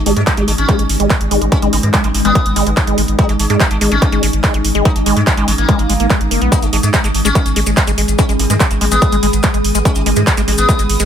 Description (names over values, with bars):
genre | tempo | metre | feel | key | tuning
psychedelic trance | 144 BPM | 4/4 | straight | G# minor | A4 = 439 Hz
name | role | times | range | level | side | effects
swarming drone | sustained chords | 0.0-11.1 s | G#3 to G#4 | -20 LUFS | equal | built-in reverb, sidechain pumping
round analog bass | bass | 0.0-11.1 s | F#1 to G#2 | -16 LUFS | equal | none
sitar | melody | 0.1-11.1 s | D#3 to D#4 | -21 LUFS | left 1 dB | phaser, sidechain pumping, dub echo
liquid acid bass | riff | 0.1-11.0 s | G#3 to B3 | -19 LUFS | moving between left 6 dB and right 3 dB | phaser, auto-pan, sidechain pumping, ping-pong delay
techno drum kit | drums | 0.1-11.1 s | handclaps, hi-hat | -20 LUFS | right 2 dB | overdrive
electronic kick drum | drums | 0.3-10.8 s | none | -14 LUFS | equal | distortion, overdrive
maracas | percussion | 6.5-11.1 s | none | -24 LUFS | left 5 dB | none
riser | sound effects | 11.0-11.1 s | none | barely audible | none | none
room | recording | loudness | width
little or no reverb | none | -11 LUFS | side -9 dB against mid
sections
0.0-11.1 A section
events
filter sweep on acid bass 0.0-11.1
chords
0.0 G#5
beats
0.27 0.69 1.10 | 1.52 1.94 2.35 2.77 | 3.19 3.60 4.02 4.44 | 4.85 5.27 5.69 6.10 | 6.52 6.94 7.35 7.77 | 8.19 8.60 9.02 9.44 | 9.85 10.27 10.69